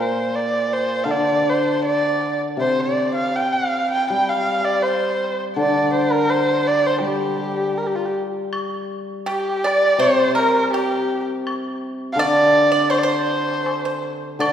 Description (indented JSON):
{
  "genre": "chinese traditional, Chinese chamber ensemble",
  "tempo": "81 BPM",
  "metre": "2/4",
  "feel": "rubato",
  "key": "unclear",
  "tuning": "A4 = 440 Hz",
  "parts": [
    { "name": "dark erhu", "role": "melody", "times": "0.0-14.5 s", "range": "F4 to G5", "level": "-19 LUFS", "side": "equal", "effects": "none" },
    { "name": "hammered dulcimer", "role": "accompaniment", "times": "0.0-14.5 s", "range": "Bb2 to G3", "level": "-23 LUFS", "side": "left 1 dB", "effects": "none" },
    { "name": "woodblock", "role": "percussion", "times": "8.5-14.5 s", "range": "none", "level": "-32 LUFS", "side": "left 2 dB", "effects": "none" },
    { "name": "pipa", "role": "second line", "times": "9.3-14.5 s", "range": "G4 to D5", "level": "-24 LUFS", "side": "right 1 dB", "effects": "none" }
  ],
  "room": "wet concert hall reverb, RT60 2.0 s",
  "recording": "heard from further back in the room",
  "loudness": "-17 LUFS",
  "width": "side -9 dB against mid",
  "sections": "0.0-8.5 A section; 8.5-14.5 B section",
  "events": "none",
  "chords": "none",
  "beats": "0.35 | 1.08 1.83 | 2.59 3.35 | 4.11 4.85 | 5.58 6.31 | 7.04 7.78 | 8.52 9.27 | 10.01 10.73 | 11.46 12.19 | 12.91 13.66 | 14.41"
}